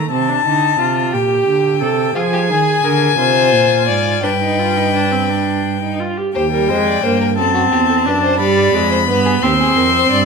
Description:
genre	classical, baroque-style fugue for string quartet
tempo	58 BPM (dotted quarters)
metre	6/8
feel	straight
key	C minor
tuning	A4 = 440 Hz
part	clear violin	melody	0.0-10.2 s	G5 to C6	-17 LUFS	left 10 dB	none
part	rich viola	accompaniment	0.0-10.2 s	G3 to A4	-18 LUFS	right 3 dB	none
part	dark cello	bass	0.0-10.2 s	Eb2 to F3	-19 LUFS	right 6 dB	none
part	rich violin	second line	2.2-10.2 s	F4 to D5	-19 LUFS	left 4 dB	none
room	moderate recital hall reverb, RT60 1.3 s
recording	none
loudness	-12 LUFS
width	side -5 dB against mid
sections	0.0-6.3 A section; 6.3-10.2 B section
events	none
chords	0.1 Adim/C; 1.1 Gm/Bb; 2.2 Dm7b5; 4.2 G; 6.3 Cm/Eb; 7.4 D7; 8.4 G7; 9.4 Cm/Eb

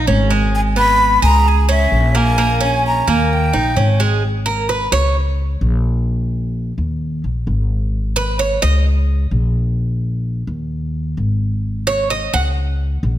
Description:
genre	latin, Cuban son and guajira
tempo	130 BPM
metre	4/4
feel	straight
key	G# minor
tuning	A4 = 440 Hz
part	Cuban tres	arpeggios	0.0-5.1, 8.2-8.8, 11.9-12.5 s	G#3 to F#5	-18 LUFS	right 3 dB	none
part	upright bass	bass	0.0-13.2 s	G#1 to D#2	-17 LUFS	equal	none
part	breathy jazz flute	melody	0.5-4.0 s	E5 to B5	-17 LUFS	left 1 dB	none
room	light reverb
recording	none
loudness	-14 LUFS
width	side -12 dB against mid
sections	0.0-4.2 A section; 4.2-13.2 B section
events	Cuban tres solo 4.2-13.2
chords	0.0 N.C.; 0.5 G#m; 1.5 C#m; 2.4 A#m7; 3.3 D#7; 4.2 G#madd11; 5.2 A#m; 6.1 A#sus4; 7.0 D#5; 7.9 G#madd11; 8.9 A#m; 9.8 A#sus4; 10.7 G#5; 11.6 G#7sus4; 12.6 A#m

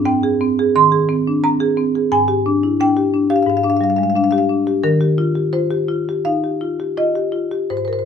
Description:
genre	classical, contemporary piece for solo marimba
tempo	80-90 BPM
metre	4/4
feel	rubato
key	unclear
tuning	A4 = 439 Hz
part	marimba with medium mallets	solo	0.0-8.1 s	Ab2 to C6	-15 LUFS	equal	none
room	light reverb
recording	close, detailed microphones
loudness	-15 LUFS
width	side -7 dB against mid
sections	0.0-8.1 A section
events	none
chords	0.0 Abmaj7; 2.1 Fm69/Ab; 4.8 Ebadd9

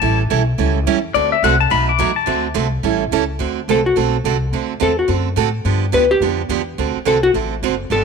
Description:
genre	country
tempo	213 BPM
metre	4/4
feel	swing 61% on 8ths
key	D mixolydian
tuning	A4 = 438 Hz
part	pedal steel guitar	second line	0.0-2.4 s	D5 to D6	-17 LUFS	left 10 dB	none
part	picked steel-string acoustic guitar	accompaniment	0.0-8.0 s	B2 to A4	-19 LUFS	right 13 dB	none
part	upright bass	bass	0.0-8.0 s	F#1 to A2	-21 LUFS	left 1 dB	none
part	vintage hollow-body jazz guitar	melody	3.7-8.0 s	F#4 to B4	-17 LUFS	left 3 dB	none
room	moderate echo chamber reverb, RT60 1.9 s, small room ambience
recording	1960s-style stereo with parts hard left and right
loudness	-15 LUFS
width	side -5 dB against mid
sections	0.0-3.4 A section; 3.4-8.0 A section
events	pedal steel guitar solo 0.0-3.4; hollow-body jazz guitar solo 3.4-8.0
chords	0.0 A7; 1.1 D7; 1.7 B7; 2.3 D7; 2.8 A7; 3.4 D7; 5.7 G7; 6.8 D7

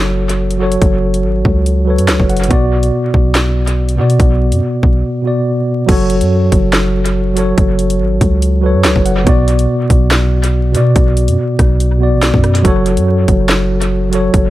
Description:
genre	hip hop, drill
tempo	142 BPM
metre	4/4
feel	half-time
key	F# minor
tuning	A4 = 440 Hz
part	mellow tine electric piano	accompaniment	0.0-14.5 s	B2 to F#5	-14 LUFS	equal	medium stereo tremolo
part	long sustained 808-style bass	bass	0.0-14.5 s	F#1 to B2	-14 LUFS	equal	none
part	drill drum kit	drums	0.3-14.4 s	crash cymbal, handclaps, hi-hat, kick drum, rim click, snare drum	-15 LUFS	equal	dub echo
room	digital ambience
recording	echo-heavy mix, vinyl crackle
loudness	-10 LUFS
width	side -16 dB against mid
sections	0.0-5.9 A section; 5.9-14.5 B section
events	break 5.0-5.9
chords	0.0 F#m; 2.5 Bm; 5.9 F#m; 9.3 Bm; 12.6 F#m

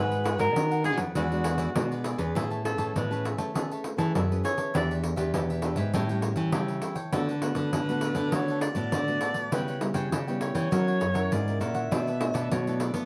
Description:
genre	samba and choro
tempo	100 BPM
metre	4/4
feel	straight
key	A major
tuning	A4 = 439 Hz
part	mellow soprano saxophone	melody	0.0-12.8 s	F#4 to E5	-33 LUFS	equal	none
part	cavaquinho	accompaniment	0.0-13.1 s	D4 to A5	-40 LUFS	equal	none
part	nylon-string guitar	accompaniment	0.0-13.1 s	A2 to B4	-36 LUFS	equal	none
part	nylon-string guitar	bass	0.0-13.1 s	E2 to B3	-32 LUFS	equal	none
part	pandeiro	percussion	0.1-13.1 s	none	-34 LUFS	equal	none
room	light reverb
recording	close, detailed microphones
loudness	-28 LUFS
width	mono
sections	0.0-2.4 A section; 2.4-13.1 B section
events	soprano saxophone solo 2.4-13.1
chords	0.0 G#m7; 1.2 E9; 2.4 Amaj9; 4.8 Em7; 5.9 A7; 7.1 D6; 9.5 C#m7b5; 10.7 F#7; 11.9 Bm7

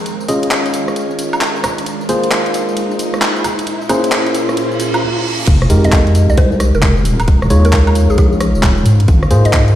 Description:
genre	UK garage, two-step garage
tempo	133 BPM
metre	4/4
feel	swing 64% on 16ths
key	F minor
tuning	A4 = 438 Hz
part	soft string machine	sustained chords	0.0-9.8 s	Bb2 to Db5	-24 LUFS	equal	phaser, ensemble chorus, sidechain pumping
part	riser, reverse cymbal and impact	sound effects	0.0-7.3 s	none	-23 LUFS	equal	none
part	garage drum kit	drums	0.1-9.7 s	crash cymbal, handclaps, hi-hat, rim click, tambourine, woodblock	-19 LUFS	equal	overdrive
part	mellow tine electric piano	stabs	0.3-9.8 s	Ab3 to Eb5	-18 LUFS	equal	ping-pong delay
part	deep soft wobble bass	bass	5.5-9.8 s	Eb1 to Ab2	-12 LUFS	equal	chorus
part	electronic kick drum	drums	5.5-9.7 s	none	-11 LUFS	equal	overdrive
part	mallet-like synth pluck	melody	5.8-9.6 s	Ab4 to Eb5	-20 LUFS	equal	chorus, cassette tape, ping-pong delay
room	moderate plate reverb, RT60 1.9 s, digital ambience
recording	played on a big sound system in a bare room, stone room reverb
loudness	-11 LUFS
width	side -12 dB against mid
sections	0.0-5.5 A section; 5.5-9.8 B section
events	build-up 0.0-5.5; riser 0.0-5.0; reverse cymbal 4.6-5.5; drop 5.5-9.8; impact 5.5-7.3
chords	0.0 Eb9sus4; 1.6 Ab69; 3.4 Bbm9; 5.5 Fm11; 7.1 Eb9sus4; 8.9 Ab69

